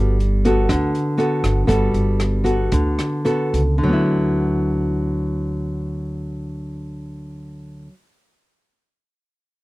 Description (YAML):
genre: bossa nova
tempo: 106-124 BPM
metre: 4/4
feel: straight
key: D major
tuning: A4 = 440 Hz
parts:
  - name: nylon-string guitar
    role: accompaniment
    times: 0.0-8.0 s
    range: D3 to A4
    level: -20 LUFS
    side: equal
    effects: none
  - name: upright bass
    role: bass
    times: 0.0-7.9 s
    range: G1 to D2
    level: -22 LUFS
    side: equal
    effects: none
  - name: vintage drum kit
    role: drums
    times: 0.2-3.7 s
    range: hi-hat, kick drum, rim click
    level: -27 LUFS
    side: equal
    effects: none
room: little or no reverb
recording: dry, close 1970s-style studio recording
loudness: -17 LUFS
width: side -20 dB against mid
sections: 0.0-3.8 A section; 3.8-8.3 B section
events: slowing down 0.0-3.8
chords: 0.0 Gmaj9; 3.8 D69